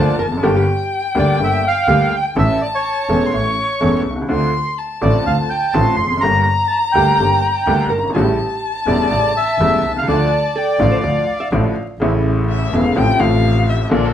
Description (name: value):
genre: tango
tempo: 125 BPM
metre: 4/4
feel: rubato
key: D minor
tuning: A4 = 440 Hz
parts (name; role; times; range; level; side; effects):
- bandoneon; melody; 0.0-11.5 s; C#5 to C6; -18 LUFS; right 2 dB; none
- archtop guitar, miked and amplified; second line; 0.0-1.0, 7.9-12.0 s; G4 to E5; -23 LUFS; right 3 dB; none
- warm violin; second line; 0.0-14.1 s; A4 to C#6; -20 LUFS; left 3 dB; none
- bright upright piano; accompaniment; 0.0-14.1 s; E1 to A4; -18 LUFS; left 1 dB; none
- clear double bass; bass; 0.0-14.1 s; E1 to D2; -20 LUFS; equal; none
room: wet studio reverb, RT60 0.6 s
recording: band playing live in one room, vinyl crackle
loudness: -14 LUFS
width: side -10 dB against mid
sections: 0.0-12.0 A section; 12.0-14.1 B section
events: violin solo 12.0-14.1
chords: 0.4 Gm; 2.4 A; 4.3 Dm7; 6.2 Gm; 8.1 A7; 10.1 Dm; 12.0 A; 13.0 F/A